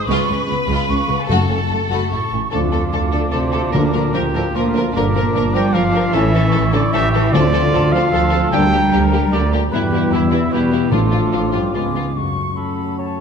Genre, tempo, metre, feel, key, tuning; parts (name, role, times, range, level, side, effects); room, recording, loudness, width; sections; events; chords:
cinematic; 149 BPM; 3/4; straight; D minor; A4 = 440 Hz
rich symphonic violin section; melody; 0.0-12.0 s; E4 to B4; -25 LUFS; left 3 dB
small flute group; second line; 0.0-13.2 s; G#5 to D6; -27 LUFS; right 1 dB
concert harp; arpeggios; 0.0-13.2 s; F#2 to A5; -26 LUFS; left 9 dB
warm symphonic violin section; second line; 0.1-12.0 s; A3 to F#4; -29 LUFS; left 3 dB
dark studio viola section; accompaniment; 0.1-12.0 s; E3 to A3; -27 LUFS; equal
warm studio double bass section; bass; 0.1-12.1 s; F#1 to E2; -21 LUFS; right 2 dB
warm symphonic cello section; bass; 0.1-12.2 s; C#2 to G3; -22 LUFS; right 2 dB
timpani; percussion; 1.3-4.3, 7.3-7.9, 10.9-11.5 s; F#2 to D3; -22 LUFS; equal
mellow clarinet; second line; 2.5-12.0 s; D4 to F4; -27 LUFS; left 4 dB
mellow cor anglais; second line; 2.5-13.2 s; C#4 to C#5; -27 LUFS; right 2 dB
dark French horn section; sustained chords; 2.5-13.2 s; A3 to E#4; -25 LUFS; left 5 dB
dark trombone section; sustained chords; 2.5-13.2 s; A2 to G#3; -28 LUFS; right 4 dB
dark trumpet; stabs; 2.5-13.2 s; F4 to G5; -23 LUFS; right 2 dB
wet scoring stage reverb, RT60 1.6 s; -14 LUFS; side -6 dB against mid
0.0-2.5 A section; 2.5-12.2 B section; 12.2-13.2 A section
0.1 C#7; 1.3 F#m; 2.1 A; 2.5 Dm; 3.7 Bb/D; 5.0 Gm7; 6.1 A; 7.3 Dm7; 8.5 Gm/D; 9.7 Em; 10.9 Dm/A; 11.8 C#7; 12.2 F#m